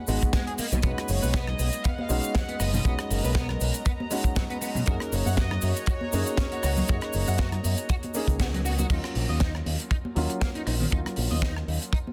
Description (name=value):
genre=nu-disco, nu disco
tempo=119 BPM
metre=4/4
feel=swing 55% on 16ths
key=Eb minor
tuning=A4 = 440 Hz
part: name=rich chamber violin section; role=melody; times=0.0-8.4 s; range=Bb4 to F#5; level=-39 LUFS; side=equal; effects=tape echo
part: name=dark grand piano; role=accompaniment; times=0.0-12.1 s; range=Gb3 to Ab4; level=-36 LUFS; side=equal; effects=sidechain pumping, slapback echo
part: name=warm studio string section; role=sustained chords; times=0.0-8.9 s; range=B3 to Bb5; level=-40 LUFS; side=equal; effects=sidechain pumping
part: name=picked electric bass with an envelope filter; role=bass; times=0.1-11.8 s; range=F#1 to Gb2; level=-30 LUFS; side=equal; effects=none
part: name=tight funk drum kit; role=drums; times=0.1-12.0 s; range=cabasa, crash cymbal, hi-hat, rim click, snare drum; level=-35 LUFS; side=equal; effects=none
part: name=kick drum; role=drums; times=0.2-12.0 s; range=none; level=-29 LUFS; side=equal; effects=none
part: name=electric guitar at the edge of break-up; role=riff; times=0.3-12.0 s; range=B2 to Gb5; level=-38 LUFS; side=equal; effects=ensemble chorus
part: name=congas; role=percussion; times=0.3-12.1 s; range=none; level=-39 LUFS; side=equal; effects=none
room=small room ambience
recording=dense, heavily limited modern master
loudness=-27 LUFS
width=mono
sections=0.0-8.9 A section; 8.9-12.1 B section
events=drop 0.0-8.9; band accent 8.4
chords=0.0 Db7sus4; 0.6 B6; 4.9 Gb6; 8.9 Ebm7